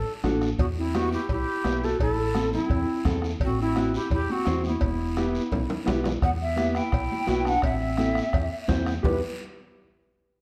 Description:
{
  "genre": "latin, cumbia",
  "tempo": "170 BPM",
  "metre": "4/4",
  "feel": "straight",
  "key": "E minor",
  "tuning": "A4 = 439 Hz",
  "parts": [
    { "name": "breathy mellow jazz flute", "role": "melody", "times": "0.0-9.2 s", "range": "E4 to G5", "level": "-31 LUFS", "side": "equal", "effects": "slapback echo" },
    { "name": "woody fretless electric bass", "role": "bass", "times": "0.0-9.2 s", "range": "E1 to E2", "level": "-32 LUFS", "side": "equal", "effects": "ensemble chorus" },
    { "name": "mellow electric guitar", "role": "accompaniment", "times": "0.2-9.2 s", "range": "B3 to C5", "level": "-33 LUFS", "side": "equal", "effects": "none" },
    { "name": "bombo", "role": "percussion", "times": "0.2-9.1 s", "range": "none", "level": "-31 LUFS", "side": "equal", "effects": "none" },
    { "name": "congas", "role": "percussion", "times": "0.2-9.1 s", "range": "none", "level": "-37 LUFS", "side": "equal", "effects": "none" },
    { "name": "guiro", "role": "percussion", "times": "0.2-9.1 s", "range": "none", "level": "-46 LUFS", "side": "equal", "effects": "none" },
    { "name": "timbales and cowbell", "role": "percussion", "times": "0.2-9.1 s", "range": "none", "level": "-38 LUFS", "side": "equal", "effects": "none" },
    { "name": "breathy clarinet", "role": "second line", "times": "0.6-9.2 s", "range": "B3 to G4", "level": "-35 LUFS", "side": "equal", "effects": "none" }
  ],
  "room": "moderate large studio reverb, RT60 1.3 s",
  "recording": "dark, warm production",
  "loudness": "-26 LUFS",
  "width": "mono",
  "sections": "0.0-6.2 A section; 6.2-9.0 B section; 9.0-10.4 C section",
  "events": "drum fill 5.2-6.2",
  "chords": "0.0 D; 0.6 Em; 2.0 Am; 4.8 Em; 7.6 Am; 9.0 Em"
}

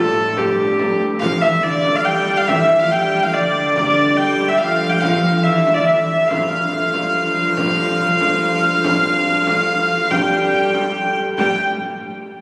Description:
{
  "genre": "medieval dance",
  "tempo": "142 BPM",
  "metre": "3/4",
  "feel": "straight",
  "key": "unclear",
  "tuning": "A4 = 438 Hz",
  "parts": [
    { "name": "rich hurdy-gurdy", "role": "melody", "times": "0.0-11.6 s", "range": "G4 to G5", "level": "-19 LUFS", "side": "equal", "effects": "none" },
    { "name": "rich viola da gamba", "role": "second line", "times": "0.0-11.5 s", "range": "G2 to G3", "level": "-24 LUFS", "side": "equal", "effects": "none" },
    { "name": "dark hurdy-gurdy", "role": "drone", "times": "0.0-11.4 s", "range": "G2 to D3", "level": "-29 LUFS", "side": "equal", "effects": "none" },
    { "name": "frame drum", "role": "percussion", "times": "0.2-11.6 s", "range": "none", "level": "-29 LUFS", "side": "equal", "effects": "none" }
  ],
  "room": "wet church reverb, RT60 3.1 s",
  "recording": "recorded on a phone in the room, studio reverb",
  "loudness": "-17 LUFS",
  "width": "mono",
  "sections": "0.0-1.2 A section; 1.2-11.4 B section; 11.4-12.4 C section",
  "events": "none",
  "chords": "none"
}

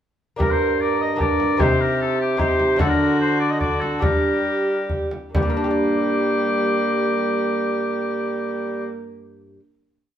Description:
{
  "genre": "classical, renaissance-style consort dance",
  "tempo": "131-151 BPM",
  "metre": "3/4",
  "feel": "straight",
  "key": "G harmonic minor",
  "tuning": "A4 = 440 Hz",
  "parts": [
    { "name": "clear oboe", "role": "melody", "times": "0.4-8.9 s", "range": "G4 to Eb5", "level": "-25 LUFS", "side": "left 5 dB", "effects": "none" },
    { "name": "rich viola", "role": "second line", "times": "0.4-8.9 s", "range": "Bb3 to Bb4", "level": "-25 LUFS", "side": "right 4 dB", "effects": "none" },
    { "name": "lute", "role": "accompaniment", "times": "0.4-9.7 s", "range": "G2 to D5", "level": "-24 LUFS", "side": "equal", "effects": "none" },
    { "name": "mellow bassoon", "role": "bass", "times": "0.4-8.9 s", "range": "G2 to G3", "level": "-24 LUFS", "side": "equal", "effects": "none" },
    { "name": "frame drum", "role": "percussion", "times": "0.4-5.6 s", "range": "none", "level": "-24 LUFS", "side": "equal", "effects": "none" }
  ],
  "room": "moderate stone room reverb, RT60 1.0 s",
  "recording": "heard from further back in the room",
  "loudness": "-18 LUFS",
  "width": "side -10 dB against mid",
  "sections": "0.4-5.4 A section; 5.4-8.1 final chord",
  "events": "slowing down 2.2-5.4",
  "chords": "0.4 Gm; 1.6 Cm; 2.8 D; 4.0 Gm"
}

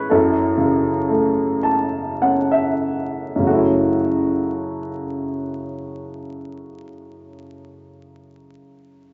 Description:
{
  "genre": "classical, lyrical solo piano",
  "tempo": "47-66 BPM",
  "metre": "3/4",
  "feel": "rubato",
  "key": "F# minor",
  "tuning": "A4 = 439 Hz",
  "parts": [
    { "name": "dark upright piano", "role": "solo", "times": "0.0-9.1 s", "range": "F#2 to A5", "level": "-20 LUFS", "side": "equal", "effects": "none" }
  ],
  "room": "moderate recital hall reverb, RT60 1.2 s",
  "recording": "vinyl crackle, nothing above 7.8 kHz",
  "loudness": "-20 LUFS",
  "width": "mono",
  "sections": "0.0-3.5 A section; 3.5-7.2 B section",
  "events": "slowing down 0.0-3.5; upright piano fill 1.1-3.5",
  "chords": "0.1 F#m7"
}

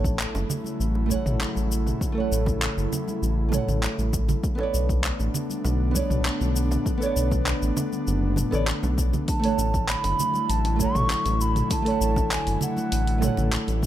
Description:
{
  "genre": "sunset chillout",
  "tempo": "99 BPM",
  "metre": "4/4",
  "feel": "straight",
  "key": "A major",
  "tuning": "A4 = 442 Hz",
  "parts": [
    { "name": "nylon-string guitar", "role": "accompaniment", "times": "0.0-13.9 s", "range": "A3 to F#5", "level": "-30 LUFS", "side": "moving between left 3 dB and right 6 dB", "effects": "auto-pan, ping-pong delay" },
    { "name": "airy breathy pad", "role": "sustained chords", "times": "0.0-13.9 s", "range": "C#3 to E4", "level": "-30 LUFS", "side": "left 2 dB", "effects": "chorus" },
    { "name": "round analog bass", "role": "bass", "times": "0.0-13.9 s", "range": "F#1 to B1", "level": "-25 LUFS", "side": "equal", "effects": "none" },
    { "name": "electronic kick drum", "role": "drums", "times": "0.0-13.9 s", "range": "none", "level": "-28 LUFS", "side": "equal", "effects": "none" },
    { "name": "deep house drum kit", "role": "drums", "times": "0.1-13.9 s", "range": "handclaps, hi-hat, shaker, toms", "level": "-30 LUFS", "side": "equal", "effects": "none" },
    { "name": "bongos and congas", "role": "percussion", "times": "0.3-13.9 s", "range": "none", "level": "-34 LUFS", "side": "right 4 dB", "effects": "none" },
    { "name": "baroque flute", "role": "melody", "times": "9.3-13.8 s", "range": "F#5 to C#6", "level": "-27 LUFS", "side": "right 2 dB", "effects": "ping-pong delay" }
  ],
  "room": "little or no reverb",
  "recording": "none",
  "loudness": "-22 LUFS",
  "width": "side -12 dB against mid",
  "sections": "0.0-13.9 A section",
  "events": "none",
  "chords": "0.0 A6; 4.4 Bm9; 9.3 A6"
}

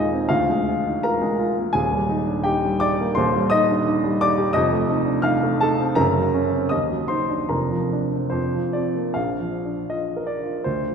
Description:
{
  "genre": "classical, romantic character piece for solo piano",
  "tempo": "71-88 BPM",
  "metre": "2/4",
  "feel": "rubato",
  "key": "Eb major, Bb major from 3.2 s",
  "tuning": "A4 = 440 Hz",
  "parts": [
    { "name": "warm baby grand piano", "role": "solo", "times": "0.0-10.9 s", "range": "Eb1 to F6", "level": "-19 LUFS", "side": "equal", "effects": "none" }
  ],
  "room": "wet concert hall reverb, RT60 2.2 s",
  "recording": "minimal, uncompressed stereo recording",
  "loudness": "-19 LUFS",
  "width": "side -6 dB against mid",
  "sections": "0.0-9.2 A section; 9.2-10.9 B section",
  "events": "none",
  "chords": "0.3 Bb7/D; 1.8 Eb; 3.2 Cm/Eb; 4.6 F7; 6.0 Gb; 6.7 Ebm; 7.5 Bb/F; 9.2 Bb"
}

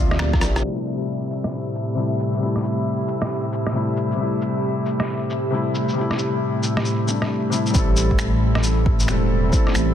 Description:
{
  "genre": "future garage",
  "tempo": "135 BPM",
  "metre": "4/4",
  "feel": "swing 63% on 16ths",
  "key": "A phrygian",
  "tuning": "A4 = 440 Hz",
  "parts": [
    { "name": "felt-muted upright piano", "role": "accompaniment", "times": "0.0-9.9 s", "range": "C3 to A4", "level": "-24 LUFS", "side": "left 3 dB", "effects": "sidechain pumping, low-pass filter, ping-pong delay" },
    { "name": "warbly tape-like pad", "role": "sustained chords", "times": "0.0-9.9 s", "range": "A2 to E5", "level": "-25 LUFS", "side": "right 2 dB", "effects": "chorus, built-in reverb, vintage 12-bit sampler grit, sidechain pumping" },
    { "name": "dark detuned saw bass", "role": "bass", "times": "0.0-0.6, 7.7-9.9 s", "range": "E1 to D2", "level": "-21 LUFS", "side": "equal", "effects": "sidechain pumping" },
    { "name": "wind-like tuned noise texture", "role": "texture", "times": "0.0-7.8 s", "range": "E5", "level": "-35 LUFS", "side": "left 4 dB", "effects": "built-in reverb" },
    { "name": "electronic rim click, finger snaps and shaker", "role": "drums", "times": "0.1-9.9 s", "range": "none", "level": "-28 LUFS", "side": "equal", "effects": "soft clipping on snare" },
    { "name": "electronic kick drum", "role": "drums", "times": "0.3-0.4, 7.7-9.6 s", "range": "none", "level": "-20 LUFS", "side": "equal", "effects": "overdrive" }
  ],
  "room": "digital ambience",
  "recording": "dense, heavily limited modern master, low-pass filter",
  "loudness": "-19 LUFS",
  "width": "side -10 dB against mid",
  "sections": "0.6-7.8 A section; 7.8-9.9 B section",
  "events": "drum fill 0.2-0.6; band accent 0.5; filter sweep on felt piano 0.6-7.8; filter sweep 0.6-7.8",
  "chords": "0.0 Bb6; 0.6 Am7"
}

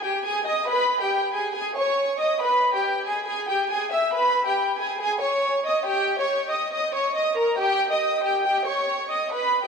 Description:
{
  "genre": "hip hop",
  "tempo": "139 BPM",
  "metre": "4/4",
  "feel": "half-time",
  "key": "unclear",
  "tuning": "A4 = 440 Hz",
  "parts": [
    { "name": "warm studio violin section", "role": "solo", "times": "0.0-9.7 s", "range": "G4 to E6", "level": "-21 LUFS", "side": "equal", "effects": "none" }
  ],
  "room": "wet lush hall reverb, RT60 2.5 s",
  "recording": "dreamy mix soaked in reverb",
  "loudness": "-21 LUFS",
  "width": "side -5 dB against mid",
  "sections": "0.0-9.7 A section",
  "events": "none",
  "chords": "0.0 G#m; 2.4 E (rootless); 5.9 D#"
}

